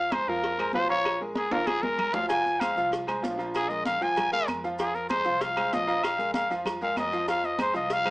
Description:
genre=latin, salsa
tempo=193 BPM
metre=4/4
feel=straight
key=F minor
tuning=A4 = 440 Hz
part: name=growling trumpet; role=melody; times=0.0-8.1 s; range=Ab4 to Ab5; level=-26 LUFS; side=left 1 dB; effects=none
part: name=bright grand piano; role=accompaniment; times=0.0-8.1 s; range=F3 to F5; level=-31 LUFS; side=right 1 dB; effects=none
part: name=upright bass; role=bass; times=0.0-8.1 s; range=Bb1 to F2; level=-45 LUFS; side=equal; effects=none
part: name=agogo bells and timbales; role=percussion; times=0.1-8.1 s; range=none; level=-34 LUFS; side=right 2 dB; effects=none
part: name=claves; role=percussion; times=0.1-8.1 s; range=none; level=-40 LUFS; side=right 1 dB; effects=none
part: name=congas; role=percussion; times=0.1-8.1 s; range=none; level=-36 LUFS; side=left 1 dB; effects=none
part: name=cowbell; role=percussion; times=0.1-8.1 s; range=none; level=-36 LUFS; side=left 1 dB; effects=none
part: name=maracas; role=percussion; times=2.3-8.1 s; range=none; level=-51 LUFS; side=right 2 dB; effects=none
room=moderate studio ambience, RT60 0.5 s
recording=small speaker sound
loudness=-24 LUFS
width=side -21 dB against mid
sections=0.0-8.1 A section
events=trumpet solo 0.0-8.1; drum fill 1.5-2.3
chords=0.0 Fm; 1.1 Bbm7; 2.3 Fm; 3.5 Bb5; 4.8 Fm7; 6.0 Bb5; 7.3 Fm

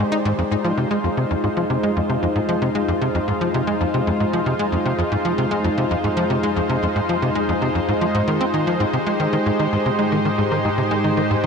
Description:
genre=ambient, sequencer-driven space music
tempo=114 BPM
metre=4/4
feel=straight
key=F minor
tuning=A4 = 440 Hz
part: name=lush unison pad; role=sustained chords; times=0.0-11.5 s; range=Ab3 to C5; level=-20 LUFS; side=equal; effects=chorus
part: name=tight sequencer bass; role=riff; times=0.0-11.5 s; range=F2 to Eb4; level=-21 LUFS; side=equal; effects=analog chorus, ping-pong delay
part: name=analog drone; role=bass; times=1.6-11.5 s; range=F2 to Ab2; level=-34 LUFS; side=right 1 dB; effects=none
room=wet huge ambient reverb, RT60 8.9 s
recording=cassette tape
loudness=-18 LUFS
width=side -6 dB against mid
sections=0.4-11.5 A section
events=none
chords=0.4 Fm7; 8.8 Abmaj7

